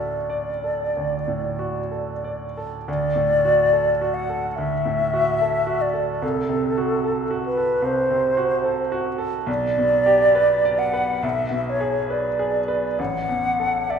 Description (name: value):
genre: classical, romantic duo for flute and grand piano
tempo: 59-76 BPM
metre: 4/4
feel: rubato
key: D major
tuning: A4 = 440 Hz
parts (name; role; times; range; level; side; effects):
- mellow silver concert flute; melody; 0.0-14.0 s; A4 to F#5; -20 LUFS; equal; none
- bright grand piano; accompaniment; 0.0-14.0 s; A1 to D5; -26 LUFS; right 2 dB; none
room: wet recital hall reverb, RT60 1.5 s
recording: recorded in a church or concert hall, nothing above 10.3 kHz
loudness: -19 LUFS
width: side -7 dB against mid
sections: 0.0-2.9 A section; 2.9-14.0 A section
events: none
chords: 0.0 D; 6.2 Am6/C; 9.5 G/B; 11.2 Bm69; 13.0 A5